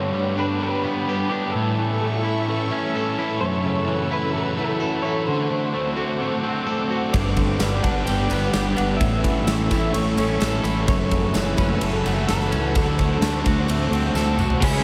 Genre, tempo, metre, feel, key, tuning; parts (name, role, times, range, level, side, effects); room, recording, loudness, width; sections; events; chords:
rock, shoegaze and dream pop; 128 BPM; 4/4; straight; A4 = 439 Hz
electric guitar through a small old amp; melody; 0.0-14.8 s; G4 to G5; -32 LUFS; equal; tremolo, diffuse ambient delay
string machine, cellos; sustained chords; 0.0-14.8 s; A4 to E6; -34 LUFS; equal; ensemble chorus
fingerpicked twelve-string acoustic guitar; arpeggios; 0.0-14.8 s; E3 to A4; -34 LUFS; equal
overdriven electric guitar; riff; 0.0-14.8 s; F#2 to A4; -29 LUFS; equal; reverse reverb
thick fuzz guitar; riff; 0.0-14.8 s; F#2 to F#4; -28 LUFS; equal; distortion, subtle chorus
fuzz fingered electric bass; bass; 7.1-14.8 s; F#1 to D2; -27 LUFS; equal; overdrive
huge arena drum kit; drums; 7.1-14.7 s; crash cymbal, kick drum, ride cymbal, snare drum, toms; -27 LUFS; equal
tambourine; percussion; 7.1-14.8 s; -44 LUFS; equal
cranked stack guitar; riff; 14.6-14.8 s; C#3 to C#4; -28 LUFS; equal; overdrive
wet huge ambient reverb, RT60 7.4 s; dreamy mix soaked in reverb; -22 LUFS; mono
0.0-14.6 A section
drum fill 14.2-14.6
0.0 G; 1.5 A; 3.4 F#m7; 5.3 D7; 7.1 G; 9.0 A; 10.9 F#m7; 12.8 D7